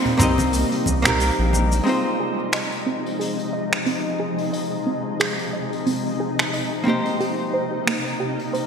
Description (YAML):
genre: sunset chillout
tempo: 90 BPM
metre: 4/4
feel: swing 56% on 16ths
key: unclear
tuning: A4 = 438 Hz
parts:
  - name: nylon-string guitar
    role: melody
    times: 0.0-1.2 s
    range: C4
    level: -29 LUFS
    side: right 4 dB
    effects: none
  - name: archtop guitar, miked and amplified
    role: accompaniment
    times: 0.0-8.7 s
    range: Ab3 to Eb5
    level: -24 LUFS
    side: equal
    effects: auto-pan, ping-pong delay
  - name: shimmering ambient pad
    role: sustained chords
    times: 0.0-8.7 s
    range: C3 to Eb4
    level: -26 LUFS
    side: left 1 dB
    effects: chorus, built-in reverb
  - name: vintage brush drum kit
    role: drums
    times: 0.1-8.7 s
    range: cabasa, finger snaps, hi-hat, toms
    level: -25 LUFS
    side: equal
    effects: gated reverb
  - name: congas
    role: percussion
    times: 0.1-1.7 s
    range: none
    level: -30 LUFS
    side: left 1 dB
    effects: none
  - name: round analog bass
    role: bass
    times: 0.2-1.8 s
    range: Bb1 to C2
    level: -22 LUFS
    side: equal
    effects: none
  - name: electronic kick drum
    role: drums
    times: 0.2-1.2 s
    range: none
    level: -28 LUFS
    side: equal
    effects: none
  - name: soft round pluck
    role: arpeggios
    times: 1.9-8.6 s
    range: Bb3 to Eb5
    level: -26 LUFS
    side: right 2 dB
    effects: chorus, vintage 12-bit sampler grit, ping-pong delay
room: wet lush hall reverb, RT60 2.7 s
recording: bright 1980s-style digital production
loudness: -20 LUFS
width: side -6 dB against mid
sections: 0.0-1.9 A section; 1.9-8.7 B section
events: filter sweep on synth arpeggio sound 1.9-8.7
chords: 0.0 Cm7; 1.9 Fm7; 6.9 Cm7